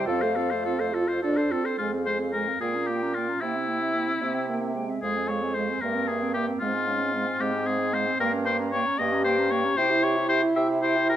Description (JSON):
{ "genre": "quick classical-period movement for wind quintet", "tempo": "75 BPM (dotted quarters)", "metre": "6/8", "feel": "rubato", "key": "F minor", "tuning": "A4 = 440 Hz", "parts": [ { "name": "concert flute", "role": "melody", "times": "0.0-11.2 s", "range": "E5 to Bb5", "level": "-37 LUFS", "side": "left 8 dB", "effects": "none" }, { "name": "warm oboe", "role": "second line", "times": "0.0-11.2 s", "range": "E4 to E5", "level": "-27 LUFS", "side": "left 3 dB", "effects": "none" }, { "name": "mellow clarinet", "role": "accompaniment", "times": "0.0-11.2 s", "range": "Ab3 to A4", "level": "-32 LUFS", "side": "right 7 dB", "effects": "none" }, { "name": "warm French horn", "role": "accompaniment", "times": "0.0-11.2 s", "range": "Ab3 to Ab4", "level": "-29 LUFS", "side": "equal", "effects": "none" }, { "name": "warm bassoon", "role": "bass", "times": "0.0-11.2 s", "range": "F2 to C3", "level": "-31 LUFS", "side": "right 3 dB", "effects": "none" } ], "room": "moderate recital hall reverb, RT60 1.6 s", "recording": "close, detailed microphones", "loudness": "-23 LUFS", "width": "side -11 dB against mid", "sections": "0.0-1.8 A section; 1.8-11.2 A section", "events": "none", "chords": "0.1 F; 1.8 Fm; 2.6 Gdim/Bb; 3.4 C7; 5.0 Fm; 5.8 C7/G; 6.6 Fm/Ab; 8.2 Gdim; 9.8 C" }